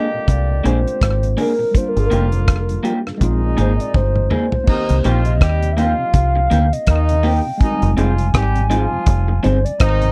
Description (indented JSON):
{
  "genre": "lovers rock reggae",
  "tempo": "82 BPM",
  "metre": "4/4",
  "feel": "swing 59% on 16ths",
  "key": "C minor",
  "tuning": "A4 = 440 Hz",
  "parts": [
    { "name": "hollow clarinet-like synth lead", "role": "melody", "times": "0.0-10.1 s", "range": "Ab4 to Ab5", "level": "-25 LUFS", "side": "equal", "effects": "chorus, tape echo" },
    { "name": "warm horn section", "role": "second line", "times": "0.0-10.1 s", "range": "Bb2 to G4", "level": "-28 LUFS", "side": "equal", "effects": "none" },
    { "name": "tine electric piano", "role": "accompaniment", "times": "0.0-10.1 s", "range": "D3 to G4", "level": "-30 LUFS", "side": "equal", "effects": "overdrive, slapback echo" },
    { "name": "electric guitar through a small old amp", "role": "stabs", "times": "0.0-9.6 s", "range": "Bb3 to Ab4", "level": "-22 LUFS", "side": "equal", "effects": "subtle chorus" },
    { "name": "mellow tonewheel organ", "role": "accompaniment", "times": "0.1-10.1 s", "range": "F2 to Eb4", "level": "-30 LUFS", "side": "equal", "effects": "none" },
    { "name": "deep dub fingered electric bass", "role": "bass", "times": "0.3-10.1 s", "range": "F1 to Eb2", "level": "-19 LUFS", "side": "equal", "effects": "none" },
    { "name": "damped 70s drum kit", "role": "drums", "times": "0.3-10.1 s", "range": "crash cymbal, hi-hat, kick drum, rim click, toms", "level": "-19 LUFS", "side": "equal", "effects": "none" }
  ],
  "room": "little or no reverb",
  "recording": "dry, close 1970s-style studio recording",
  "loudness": "-17 LUFS",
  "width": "mono",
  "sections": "0.0-4.7 A section; 4.7-10.1 B section",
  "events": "drum fill 3.9-4.7",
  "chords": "0.0 Bb7; 1.7 Gm7; 3.2 Bb7sus4; 4.7 Cm7; 7.6 Fm7"
}